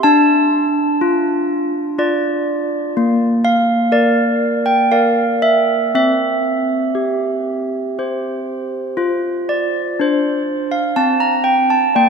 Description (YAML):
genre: classical, tune for handbells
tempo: 61 BPM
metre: 3/4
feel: straight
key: F major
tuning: A4 = 440 Hz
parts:
  - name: handbells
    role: solo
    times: 0.0-12.1 s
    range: Bb3 to Bb5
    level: -14 LUFS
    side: equal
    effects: none
room: wet cathedral reverb, RT60 5.0 s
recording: minimal, uncompressed stereo recording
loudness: -14 LUFS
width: side -5 dB against mid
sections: 0.0-9.0 A section; 9.0-12.1 B section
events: none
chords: 0.0 Dm; 3.0 Bb; 5.9 C; 9.0 F5